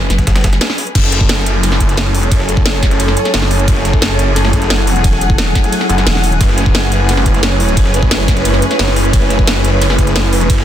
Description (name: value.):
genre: dark technical drum and bass.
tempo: 176 BPM.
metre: 4/4.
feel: straight.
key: F# minor.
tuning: A4 = 440 Hz.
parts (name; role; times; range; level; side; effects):
dark symphonic string section; sustained chords; 0.0-10.6 s; F#3 to B4; -19 LUFS; left 2 dB; sidechain pumping.
snarling distorted saw bass; bass; 0.0-10.6 s; F#1; -14 LUFS; equal; distortion, overdrive, sidechain pumping.
vowel-sweep wobble bass; bass; 0.1-0.6, 5.0-6.4 s; E1 to F#1; -15 LUFS; equal; chorus.
breakbeat sampler-style drum kit; drums; 0.1-10.6 s; hi-hat, snare drum; -26 LUFS; right 1 dB; none.
drum and bass drum kit; drums; 0.1-10.6 s; crash cymbal, hi-hat, ride cymbal, snare drum; -18 LUFS; equal; soft clipping on snare.
electronic kick drum; drums; 0.2-10.6 s; none; -14 LUFS; equal; none.
airy breathy pad; texture; 0.9-10.6 s; A3 to F#5; -20 LUFS; right 1 dB; chorus, sidechain pumping.
room: light reverb.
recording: dense, heavily limited modern master.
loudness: -10 LUFS.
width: side -11 dB against mid.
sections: 1.0-10.6 A section.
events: break 0.6-1.0; drop 1.0-10.6.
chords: 0.0 F#5; 1.0 F#m.